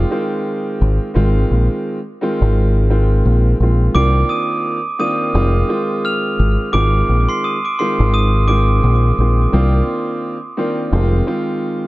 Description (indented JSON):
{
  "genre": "hip hop, boom-bap hip-hop",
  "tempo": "86 BPM",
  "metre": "4/4",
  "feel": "swing 60% on 16ths",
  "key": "F dorian",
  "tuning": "A4 = 440 Hz",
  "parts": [
    { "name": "dark baby grand piano", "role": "accompaniment", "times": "0.0-11.9 s", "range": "Eb3 to F4", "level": "-20 LUFS", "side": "equal", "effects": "cassette tape, high-pass filter, low-pass filter" },
    { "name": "deep dub fingered electric bass", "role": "bass", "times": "0.0-11.2 s", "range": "F1 to C2", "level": "-13 LUFS", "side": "equal", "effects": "none" },
    { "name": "glockenspiel with hard plastic mallets", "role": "melody", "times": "3.9-9.0 s", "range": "C6 to F7", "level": "-21 LUFS", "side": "right 2 dB", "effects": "high-pass filter, low-pass filter, ping-pong delay" }
  ],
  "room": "small room ambience",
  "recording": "none",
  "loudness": "-14 LUFS",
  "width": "side -19 dB against mid",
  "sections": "0.0-11.9 A section",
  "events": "none",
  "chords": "0.0 Fm7; 1.2 Ab6; 4.0 Cm11; 5.3 Fm7; 6.7 Ab6; 9.5 Cm11; 10.9 Fm7",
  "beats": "0.46 | 1.16 1.86 2.56 3.25 | 3.95 4.65 5.35 6.04 | 6.74 7.44 8.14 8.84 | 9.53 10.23 10.93 11.63"
}